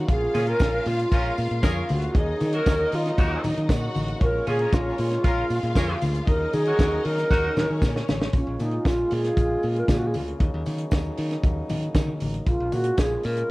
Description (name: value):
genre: disco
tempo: 116 BPM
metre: 4/4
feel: straight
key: Bb minor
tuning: A4 = 440 Hz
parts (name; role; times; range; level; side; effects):
- alto flute; melody; 0.0-13.5 s; Db4 to Bb4; -26 LUFS; equal; cassette tape
- clear studio string section; second line; 0.0-8.3 s; Db4 to Gb5; -34 LUFS; left 2 dB; analog delay
- mellow French horn section; sustained chords; 0.0-13.5 s; Db3 to F4; -31 LUFS; equal; none
- modern bright fingered electric bass; bass; 0.0-13.4 s; A1 to Eb3; -28 LUFS; equal; none
- tight funk drum kit; drums; 0.1-13.5 s; hi-hat, kick drum, snare drum; -24 LUFS; equal; cassette tape
- congas; percussion; 0.1-13.1 s; none; -33 LUFS; left 2 dB; none
- tambourine; percussion; 0.1-13.1 s; none; -50 LUFS; right 3 dB; none
- warm horn section; stabs; 0.3-7.5 s; Db4 to Db5; -31 LUFS; equal; none
room: light reverb, small room ambience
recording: home recording on cassette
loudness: -21 LUFS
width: side -20 dB against mid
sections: 0.0-8.3 A section; 8.3-13.5 B section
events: drum fill 7.3-8.3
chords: 0.1 Bbm7; 2.2 Ebm7; 4.2 Bbm7; 6.3 Ebm7; 8.3 Bbm7; 10.4 Ebm7; 12.5 Bbm7